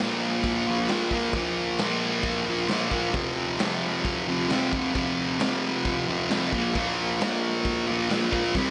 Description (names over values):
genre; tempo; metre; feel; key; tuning
garage rock duo or trio; 133 BPM; 4/4; straight; unclear; A4 = 440 Hz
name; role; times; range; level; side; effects
thick fuzz guitar; riff; 0.0-8.7 s; F2 to C4; -27 LUFS; equal; distortion
raw garage drum kit; drums; 0.0-8.7 s; crash cymbal, kick drum, snare drum; -33 LUFS; equal; none
room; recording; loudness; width
moderate studio reverb, RT60 0.6 s; nothing above 10.5 kHz; -26 LUFS; mono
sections
0.0-8.7 A section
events
none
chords
0.0 Bb5; 3.2 F5; 6.5 Bb5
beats
0.00 0.45 0.90 | 1.35 1.80 2.25 2.70 | 3.15 3.60 4.05 4.50 | 4.96 5.41 5.86 6.31 | 6.76 7.21 7.66 8.11 | 8.56